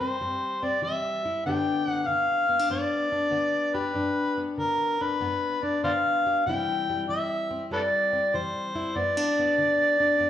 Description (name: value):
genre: acoustic country blues, solo or duo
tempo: 96 BPM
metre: 4/4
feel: swing 67% on 8ths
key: G major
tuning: A4 = 440 Hz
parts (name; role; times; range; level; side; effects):
- overdriven harmonica; melody; 0.0-10.3 s; A4 to G5; -24 LUFS; equal; none
- fingerpicked plugged-in steel-string acoustic guitar; accompaniment; 0.0-10.3 s; G2 to G4; -30 LUFS; left 3 dB; none
room: wet recital hall reverb, RT60 1.3 s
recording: recorded in a church or concert hall, studio reverb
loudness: -24 LUFS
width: side -10 dB against mid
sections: 0.0-10.3 A section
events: none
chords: 0.0 C; 1.5 G; 6.5 C; 9.0 G